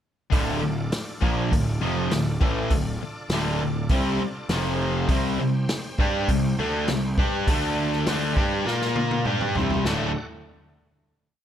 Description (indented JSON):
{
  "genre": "classic rock",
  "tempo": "101 BPM",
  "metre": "4/4",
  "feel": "straight",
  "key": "D minor",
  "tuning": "A4 = 445 Hz",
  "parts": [
    { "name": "bright tonewheel organ", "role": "sustained chords", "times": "0.3-10.3 s", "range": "Bb3 to A5", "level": "-38 LUFS", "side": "right 1 dB", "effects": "none" },
    { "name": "cranked stack guitar", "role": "riff", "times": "0.3-10.1 s", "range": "D2 to Bb4", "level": "-27 LUFS", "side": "left 7 dB", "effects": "overdrive" },
    { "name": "cranked stack guitar", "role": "riff", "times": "0.3-10.1 s", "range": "D2 to Bb4", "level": "-28 LUFS", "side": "right 7 dB", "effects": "overdrive" },
    { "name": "fuzz picked electric bass", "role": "bass", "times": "0.3-10.1 s", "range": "D1 to Bb2", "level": "-29 LUFS", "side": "equal", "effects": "overdrive" },
    { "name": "vintage drum kit", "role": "drums", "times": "0.3-10.0 s", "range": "hi-hat, kick drum, snare drum, toms", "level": "-26 LUFS", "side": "equal", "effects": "none" }
  ],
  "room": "light reverb",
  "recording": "none",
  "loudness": "-22 LUFS",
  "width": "side -10 dB against mid",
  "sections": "0.3-9.9 riff; 9.9-11.4 final chord",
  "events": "drum fill 8.7-9.9",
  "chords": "0.3 Dm; 4.5 F5; 5.1 C5; 7.5 D5; 8.1 C5; 8.7 Bb5; 9.3 C5; 9.9 D"
}